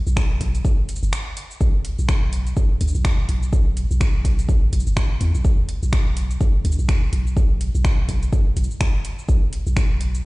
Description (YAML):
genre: minimal techno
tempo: 125 BPM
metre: 4/4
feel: swing 58% on 16ths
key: B minor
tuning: A4 = 441 Hz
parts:
  - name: punchy sub bass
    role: bass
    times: 0.1-10.2 s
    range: F#1 to E2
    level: -21 LUFS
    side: equal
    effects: sidechain pumping
  - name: garage drum kit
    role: drums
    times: 0.1-10.2 s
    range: cabasa, finger snaps, hi-hat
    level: -31 LUFS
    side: equal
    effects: overdrive, studio reverb
  - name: electronic kick drum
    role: drums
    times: 0.2-9.9 s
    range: none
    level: -19 LUFS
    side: equal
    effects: studio reverb
room: digital ambience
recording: played on a big sound system in a bare room, large studio reverb, nothing above 10.4 kHz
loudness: -18 LUFS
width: side -22 dB against mid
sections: 0.0-10.2 A section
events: break 1.1-1.6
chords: none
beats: 0.17 0.65 1.13 | 1.61 2.09 2.57 3.05 | 3.53 4.01 4.49 4.97 | 5.45 5.93 6.41 6.89 | 7.37 7.85 8.33 8.81 | 9.29 9.77